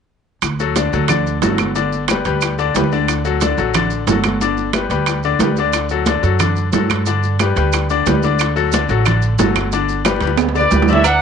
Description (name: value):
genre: latin, salsa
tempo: 181 BPM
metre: 4/4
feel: straight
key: D major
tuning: A4 = 440 Hz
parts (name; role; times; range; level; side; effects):
- upright bass; bass; 0.4-11.2 s; G1 to G2; -19 LUFS; right 2 dB; none
- bongos and cowbell; percussion; 0.4-11.2 s; none; -27 LUFS; left 10 dB; none
- claves; percussion; 0.4-11.2 s; none; -25 LUFS; right 12 dB; none
- congas; percussion; 0.4-11.2 s; none; -23 LUFS; right 2 dB; none
- maracas; percussion; 0.4-11.2 s; none; -29 LUFS; right 16 dB; none
- timbales and agogo bells; percussion; 0.4-11.2 s; none; -21 LUFS; right 14 dB; none
- bright grand piano; accompaniment; 0.6-11.0 s; D3 to D5; -18 LUFS; left 10 dB; none
- clear trumpet section; melody; 10.6-11.2 s; B4 to F#5; -15 LUFS; right 2 dB; none
room: moderate spring reverb, RT60 1.6 s, small room ambience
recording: 1960s-style stereo with parts hard left and right, nothing above 10.5 kHz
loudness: -14 LUFS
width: side -7 dB against mid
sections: 0.4-11.0 A section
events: drum fill 10.1-11.0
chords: 0.4 D; 1.8 G; 3.1 D; 4.4 G; 5.7 D; 7.1 G; 8.4 D; 9.7 G